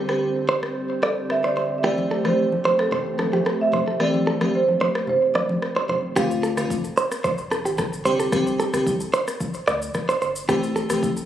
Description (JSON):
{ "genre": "afrobeats", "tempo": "111 BPM", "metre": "4/4", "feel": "straight", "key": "unclear", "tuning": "A4 = 440 Hz", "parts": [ { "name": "crystalline FM electric piano", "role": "accompaniment", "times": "0.0-11.1 s", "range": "D3 to G4", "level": "-24 LUFS", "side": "left 2 dB", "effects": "chorus" }, { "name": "hollow soft pad", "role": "sustained chords", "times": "0.0-6.1 s", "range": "D3 to C5", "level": "-28 LUFS", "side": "equal", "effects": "chorus" }, { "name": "direct-recorded clean electric guitar", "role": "riff", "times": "0.0-10.8 s", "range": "G4 to D5", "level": "-25 LUFS", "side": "right 2 dB", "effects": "ping-pong delay" }, { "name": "deep house drum kit", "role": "drums", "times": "0.1-11.3 s", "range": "kick drum, rim click, shaker", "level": "-29 LUFS", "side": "left 1 dB", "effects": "none" }, { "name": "marimba with medium mallets", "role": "melody", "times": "1.0-5.9 s", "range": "A4 to E5", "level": "-23 LUFS", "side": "right 2 dB", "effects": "ping-pong delay" }, { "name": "congas", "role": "percussion", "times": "2.0-6.0 s", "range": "none", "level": "-30 LUFS", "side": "equal", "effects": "none" }, { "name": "sub bass with octave", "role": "bass", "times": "6.2-11.2 s", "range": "D1 to D2", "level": "-34 LUFS", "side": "equal", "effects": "none" } ], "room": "light reverb, digital ambience", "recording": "recorded on a phone in the room, studio reverb", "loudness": "-20 LUFS", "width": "side -11 dB against mid", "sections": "0.0-6.2 A section; 6.2-11.3 B section", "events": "none", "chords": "0.0 Csus2; 1.8 Am7; 6.2 Dm7; 8.1 Csus2; 10.5 Am7", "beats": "0.22 0.76 1.30 | 1.84 2.38 2.92 3.46 | 4.00 4.54 5.08 5.62 | 6.16 6.70 7.25 7.79 | 8.33 8.87 9.41 9.95 | 10.49 11.03" }